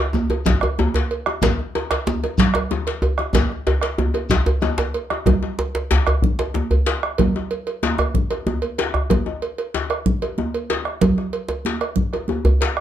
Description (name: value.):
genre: west african traditional, West African drum ensemble.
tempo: 125 BPM (dotted quarters).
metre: 12/8.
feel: straight.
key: none.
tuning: none.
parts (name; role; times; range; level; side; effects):
congas; percussion; 0.1-12.4 s; none; -23 LUFS; right 4 dB; none.
djembe; percussion; 0.1-12.8 s; none; -25 LUFS; left 6 dB; none.
djembe; percussion; 0.1-12.6 s; none; -21 LUFS; equal; none.
shekere; percussion; 0.1-4.7 s; none; -33 LUFS; left 3 dB; none.
cowbell; percussion; 0.3-12.8 s; none; -26 LUFS; right 5 dB; none.
bombo; percussion; 0.5-12.8 s; none; -22 LUFS; left 1 dB; none.
room: moderate studio reverb, RT60 0.6 s.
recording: dark, warm production.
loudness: -18 LUFS.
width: side -11 dB against mid.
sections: 0.0-5.3 A section; 5.3-12.8 A section.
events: drum fill 3.3-5.3.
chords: none.